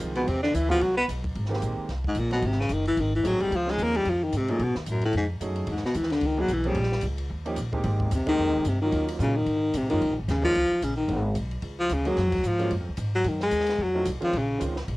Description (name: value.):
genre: jazz, small-group swing and bop.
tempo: 222 BPM.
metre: 4/4.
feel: swing 58% on 8ths.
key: Ab major, Db major from 10.0 s.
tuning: A4 = 440 Hz.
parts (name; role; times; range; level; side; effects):
clear baby grand piano; accompaniment; 0.0-14.7 s; Eb3 to Ab4; -32 LUFS; right 2 dB; cassette tape.
upright bass; bass; 0.0-15.0 s; Gb1 to C3; -29 LUFS; equal; none.
compact cocktail drum kit; drums; 0.0-15.0 s; hi-hat, kick drum, ride cymbal, snare drum; -38 LUFS; equal; none.
clear baritone saxophone; melody; 0.2-14.6 s; D#2 to B3; -24 LUFS; left 1 dB; cassette tape.
warm tenor saxophone; second line; 0.2-1.1 s; Cb4 to B4; -28 LUFS; right 2 dB; cassette tape.
room: light reverb.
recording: home recording on cassette.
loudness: -23 LUFS.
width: side -19 dB against mid.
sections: 0.0-1.3 A section; 1.3-10.0 B section; 10.0-15.0 B section.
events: baritone saxophone solo 1.3-15.0.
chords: 0.3 Ab7#9b13 (rootless); 1.3 Abmaj9; 2.4 Ab7b9; 3.5 Dbmaj9; 4.6 B13; 5.7 Emaj7#11; 6.8 Bbm; 7.3 Eb7; 7.8 Abmaj9; 8.9 Ebm7; 9.5 Ab7; 10.0 Db69; 11.1 Abm9; 11.6 Db5; 12.2 Gbmaj7sus2; 13.3 Ebmadd11; 13.8 F7b9; 14.3 Bbm11.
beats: 0.00 | 0.27 0.54 0.81 1.08 | 1.35 1.62 1.89 2.16 | 2.43 2.70 2.97 3.24 | 3.51 3.78 4.05 4.32 | 4.59 4.86 5.13 5.41 | 5.67 5.95 6.22 6.49 | 6.76 7.03 7.30 7.57 | 7.84 8.11 8.38 8.65 | 8.92 9.19 9.46 9.73 | 10.01 10.28 10.55 10.82 | 11.09 11.36 11.63 11.90 | 12.17 12.44 12.71 12.98 | 13.25 13.53 13.79 14.07 | 14.34 14.61 14.88.